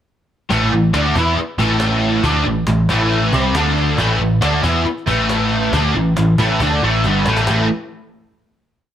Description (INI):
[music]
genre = hard rock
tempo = 138 BPM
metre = 4/4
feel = straight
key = unclear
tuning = A4 = 441 Hz
[part]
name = cranked stack guitar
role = riff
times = 0.5-7.7 s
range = G2 to E4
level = -15 LUFS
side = equal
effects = overdrive, ensemble chorus
[part]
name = vintage muted picked electric bass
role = bass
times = 0.5-7.7 s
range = G1 to E2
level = -20 LUFS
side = equal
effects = none
[part]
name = cajon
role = drums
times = 0.5-7.6 s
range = none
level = -27 LUFS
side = equal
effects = none
[sound]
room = moderate plate reverb, RT60 1.1 s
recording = bright 1980s-style digital production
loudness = -14 LUFS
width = side -10 dB against mid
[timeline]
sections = 0.5-7.5 riff; 7.5-8.9 final chord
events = drum fill 7.0-7.5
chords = 0.5 A5; 3.5 D5; 4.0 A5